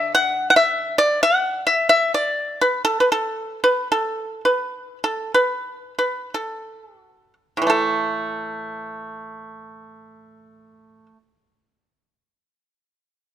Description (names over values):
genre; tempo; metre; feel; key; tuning
chinese traditional; 43-71 BPM; 4/4; rubato; A zhi mode; A4 = 443 Hz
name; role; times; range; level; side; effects
pipa; solo; 0.0-11.2 s; A2 to F#5; -18 LUFS; equal; none
room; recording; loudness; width
light reverb; close, detailed microphones; -18 LUFS; side -10 dB against mid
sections
0.0-7.7 A section; 7.7-13.1 B section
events
slowing down 0.0-7.7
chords
none